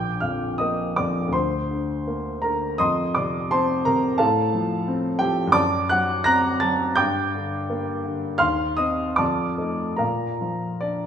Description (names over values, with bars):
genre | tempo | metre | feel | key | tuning
classical, romantic character piece for solo piano | 71-89 BPM | 2/4 | rubato | Bb major | A4 = 440 Hz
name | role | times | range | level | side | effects
warm grand piano | solo | 0.0-11.1 s | Bb1 to Bb6 | -20 LUFS | equal | none
room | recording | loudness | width
wet recital hall reverb, RT60 1.6 s | minimal, uncompressed stereo recording | -20 LUFS | side -8 dB against mid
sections
0.0-11.1 A section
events
none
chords
0.0 Bb; 1.3 Bb/D; 2.8 F; 4.2 F/A; 5.6 D7/F#; 7.0 Gm; 8.4 Cm/Eb; 9.2 F6; 10.0 Bb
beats
0.62 | 1.34 2.08 | 2.81 3.52 | 4.21 4.89 | 5.57 6.28 | 7.00 7.71 | 8.43 9.20 | 10.01 10.84